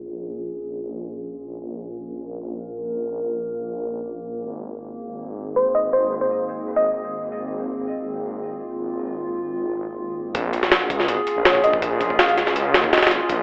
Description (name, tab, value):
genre	drum and bass, jungle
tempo	163 BPM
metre	4/4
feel	straight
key	Bb minor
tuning	A4 = 441 Hz
part	warbly tape-like pad	sustained chords	0.0-13.4 s	Bb3 to Bb4	-30 LUFS	equal	chorus, built-in reverb
part	detuned saw bass	bass	0.0-13.4 s	F1 to Eb2	-32 LUFS	equal	none
part	bell-like FM electric piano	melody	5.6-7.3, 11.5-13.1 s	C5 to F5	-24 LUFS	equal	chorus, cassette tape, dub echo
part	jungle sampler-style drum kit	drums	10.3-13.4 s	hi-hat, kick drum, snare drum	-22 LUFS	equal	none
part	sub drop	sound effects	10.3-11.8 s	none	-52 LUFS	equal	none
room	moderate echo chamber reverb, RT60 2.2 s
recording	low-pass filter, telephone sound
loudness	-23 LUFS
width	mono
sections	0.0-10.3 A section; 10.3-13.4 B section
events	filter sweep on ambient pad 0.0-10.3; filter sweep 0.0-10.3; drop 10.3-13.4; impact 10.3-11.8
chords	0.0 Bbm7; 4.5 Abadd9; 10.3 Bbm7